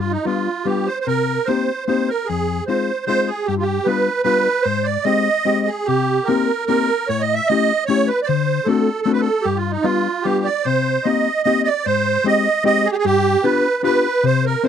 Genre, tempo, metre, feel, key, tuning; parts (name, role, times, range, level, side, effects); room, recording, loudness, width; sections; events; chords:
musette waltz; 150 BPM; 3/4; swing 54% on 8ths, rubato; C minor; A4 = 440 Hz
musette accordion; melody; 0.0-14.7 s; Eb4 to E5; -18 LUFS; right 5 dB
hollow-body jazz guitar; accompaniment; 0.0-14.7 s; F2 to Bb4; -20 LUFS; left 7 dB
light reverb; close, detailed microphones; -16 LUFS; side -8 dB against mid
0.0-14.7 A section
0.0 G7; 1.1 Cm7; 2.3 Fm7; 3.5 G7; 4.7 Abmaj7; 5.9 Cm7; 7.1 A7; 8.3 D7; 9.5 G7; 10.7 Cm7; 11.9 Abmaj7; 13.1 G7